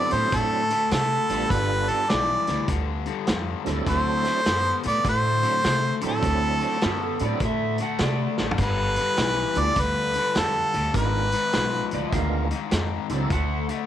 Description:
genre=electric blues shuffle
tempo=102 BPM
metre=4/4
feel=swing 64% on 8ths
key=D mixolydian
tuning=A4 = 440 Hz
part: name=clear harmonica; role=melody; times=0.0-12.1 s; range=A4 to D5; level=-24 LUFS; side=right 1 dB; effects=none
part: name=tonewheel organ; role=accompaniment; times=0.0-13.3 s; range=F#3 to Bb4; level=-31 LUFS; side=right 11 dB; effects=slow rotary speaker, overdrive, chorus vibrato
part: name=cranked stack guitar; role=riff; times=0.0-13.9 s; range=G2 to B3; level=-29 LUFS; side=left 12 dB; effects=overdrive
part: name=upright bass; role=bass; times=0.1-13.7 s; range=G1 to C3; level=-28 LUFS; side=right 1 dB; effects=none
part: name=vintage drum kit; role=drums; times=0.1-13.8 s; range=crash cymbal, hi-hat, kick drum, snare drum, toms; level=-28 LUFS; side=right 1 dB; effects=none
part: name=electric slide guitar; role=second line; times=6.8-13.8 s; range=F#4 to F#5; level=-32 LUFS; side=right 12 dB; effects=none
room=light reverb, small room ambience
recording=1960s-style stereo with parts hard left and right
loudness=-21 LUFS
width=side -11 dB against mid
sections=0.0-13.9 A section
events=drum fill 8.3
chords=0.0 D9; 1.5 G9; 3.9 D9; 8.6 G9; 11.0 G#dim7; 13.3 D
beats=0.33 0.92 | 1.51 2.10 2.69 3.28 | 3.87 4.46 5.05 5.64 | 6.23 6.82 7.41 8.00 | 8.59 9.18 9.77 10.36 | 10.96 11.54 12.14 12.73 | 13.32

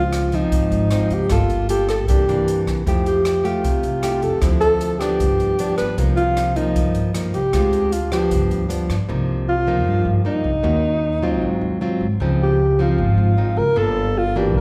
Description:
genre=bossa nova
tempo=154 BPM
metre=4/4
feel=straight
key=C minor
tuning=A4 = 440 Hz
part: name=dark alto saxophone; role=melody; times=0.0-14.6 s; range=Eb4 to B4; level=-23 LUFS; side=equal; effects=none
part: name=nylon-string guitar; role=accompaniment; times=0.0-14.6 s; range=G2 to A4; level=-25 LUFS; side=equal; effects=none
part: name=upright bass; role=bass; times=0.0-14.6 s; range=G1 to G2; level=-24 LUFS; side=equal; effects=none
part: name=open jazz drum kit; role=drums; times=0.1-9.0 s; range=hi-hat, kick drum, rim click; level=-27 LUFS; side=equal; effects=none
room=wet recital hall reverb, RT60 1.4 s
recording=recorded in a church or concert hall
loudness=-19 LUFS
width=mono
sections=0.0-9.1 A section; 9.1-14.6 A section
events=none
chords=0.0 Dbmaj9; 1.3 Gm9; 2.1 C9; 2.9 Fmaj9; 4.4 Dm9; 5.2 G7; 6.0 Cm7; 7.5 Dm7b5; 8.3 G7; 9.1 Cm7; 10.6 Ebm7; 11.4 Ab6; 12.2 Dbmaj9; 13.8 Gm9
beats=0.14 0.52 0.91 | 1.30 1.69 2.08 2.47 | 2.86 3.25 3.63 4.02 | 4.41 4.80 5.19 5.58 | 5.97 6.36 6.75 7.14 | 7.53 7.92 8.30 8.70 | 9.08 9.47 9.86 10.25 | 10.64 11.03 11.42 11.81 | 12.20 12.59 12.98 13.37 | 13.76 14.15 14.54

